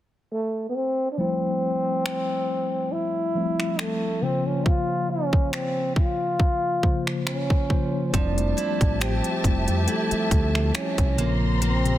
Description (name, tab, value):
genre	contemporary R&B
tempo	69 BPM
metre	4/4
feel	swing 54% on 16ths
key	F major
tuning	A4 = 440 Hz
part	breathy trombone	melody	0.3-12.0 s	A3 to F4	-26 LUFS	equal	digital delay
part	mellow tine electric piano	accompaniment	1.2-12.0 s	Bb2 to C5	-28 LUFS	left 2 dB	fast stereo tremolo
part	trap drum kit	drums	2.1-12.0 s	finger snaps, hi-hat, kick drum	-24 LUFS	equal	soft clipping on snare
part	warm studio string section	sustained chords	8.1-12.0 s	G4 to C6	-31 LUFS	left 1 dB	none
part	picked steel-string acoustic guitar	arpeggios	8.1-12.0 s	F3 to G4	-33 LUFS	right 3 dB	digital delay
part	deep dub fingered electric bass	bass	8.1-12.0 s	F1 to F2	-24 LUFS	equal	none
room	little or no reverb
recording	dense, heavily limited modern master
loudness	-22 LUFS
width	side -13 dB against mid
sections	0.0-1.2 A section; 1.2-8.1 B section; 8.1-12.0 C section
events	none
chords	0.0 N.C.; 1.2 Fmaj9; 4.2 Bbmadd9; 8.1 Fmaj9; 11.2 Bbmadd9